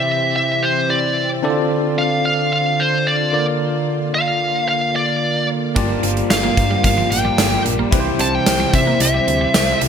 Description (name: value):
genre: 1980s-style pop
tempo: 111 BPM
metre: 4/4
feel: straight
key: G dorian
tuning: A4 = 441 Hz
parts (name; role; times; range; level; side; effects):
- high-gain lead guitar; melody; 0.0-9.8 s; C5 to A5; -19 LUFS; equal; distortion, shimmer reverb, ping-pong delay
- barky tine electric piano; accompaniment; 0.0-9.9 s; G2 to D5; -21 LUFS; left 1 dB; medium stereo tremolo, shimmer reverb
- brassy analog pad; sustained chords; 0.0-9.9 s; D3 to G4; -26 LUFS; right 1 dB; chorus, shimmer reverb
- distorted electric guitar; accompaniment; 5.8-9.9 s; G2 to C4; -30 LUFS; left 2 dB; distortion, analog chorus, shimmer reverb
- twelve-string electric guitar; riff; 5.8-9.8 s; F3 to D4; -27 LUFS; right 4 dB; none
- analog synth brass; stabs; 5.8-9.9 s; G3 to C5; -27 LUFS; equal; chorus, shimmer reverb
- solid FM bass; bass; 5.8-9.9 s; G1 to C3; -23 LUFS; equal; none
- gated 80s drum kit; drums; 5.8-9.9 s; hi-hat, kick drum, snare drum, tambourine; -18 LUFS; right 1 dB; gated reverb
room: wet plate reverb, RT60 1.9 s, studio reverb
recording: bright 1980s-style digital production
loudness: -15 LUFS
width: side -7 dB against mid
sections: 0.0-9.9 A section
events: none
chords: 0.0 C; 1.4 Dm7; 3.3 Bb/D; 5.8 Gm7; 7.9 C